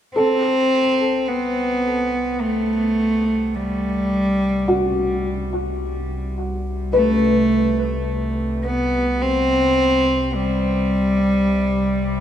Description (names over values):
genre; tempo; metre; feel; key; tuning
ambient; 53 BPM; 3/4; straight; unclear; A4 = 440 Hz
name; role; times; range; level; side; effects
rich cello; melody; 0.1-12.2 s; G3 to C4; -18 LUFS; equal; analog delay
organ-like drone; drone; 1.1-12.2 s; C3 to G3; -32 LUFS; right 1 dB; ensemble chorus, built-in reverb
felt-muted upright piano; arpeggios; 0.2-12.2 s; F#4 to B4; -23 LUFS; left 1 dB; analog delay
warm sub bass; bass; 0.2-12.2 s; C2; -28 LUFS; equal; none
room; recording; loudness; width
wet plate reverb, RT60 3.0 s; echo-heavy mix; -17 LUFS; side -10 dB against mid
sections
0.2-12.2 A section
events
fade-in on sub bass 0.2-12.2; fade-in on synth drone 0.2-12.2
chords
0.2 C5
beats
| 0.15 1.28 2.42 | 3.55 4.68 5.81 | 6.94 8.08 9.21 | 10.34 11.47